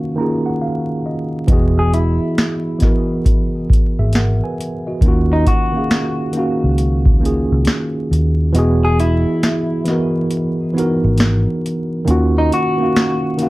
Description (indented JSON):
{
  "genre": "lo-fi hip hop",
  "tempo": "68 BPM",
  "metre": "4/4",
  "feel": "swing 66% on 16ths",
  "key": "unclear",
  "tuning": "A4 = 440 Hz",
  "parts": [
    { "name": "tine electric piano", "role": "accompaniment", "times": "0.0-13.5 s", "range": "Eb3 to Bb5", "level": "-18 LUFS", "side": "right 1 dB", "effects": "medium stereo tremolo, cassette tape, low-pass filter" },
    { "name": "vintage muted fingered electric bass", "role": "bass", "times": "1.5-12.5 s", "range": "E1 to Eb2", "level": "-16 LUFS", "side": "equal", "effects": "none" },
    { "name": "booming analog drum machine", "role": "drums", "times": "1.5-13.5 s", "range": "hi-hat, kick drum, snare drum", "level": "-16 LUFS", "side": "equal", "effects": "none" },
    { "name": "electric guitar through a small old amp", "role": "melody", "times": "1.8-13.5 s", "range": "Eb4 to G#4", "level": "-22 LUFS", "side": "left 1 dB", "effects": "low-pass filter, analog delay" }
  ],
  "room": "moderate studio reverb, RT60 0.5 s",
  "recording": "vinyl crackle",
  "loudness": "-14 LUFS",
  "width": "side -19 dB against mid",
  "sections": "0.0-8.5 A section; 8.5-13.5 B section",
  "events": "filter sweep 0.0-8.5; kick muted 8.5-13.5",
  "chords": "0.0 Ebm9; 1.5 Emaj9; 5.0 Ebm9; 8.5 Emaj9; 12.1 Ebm9"
}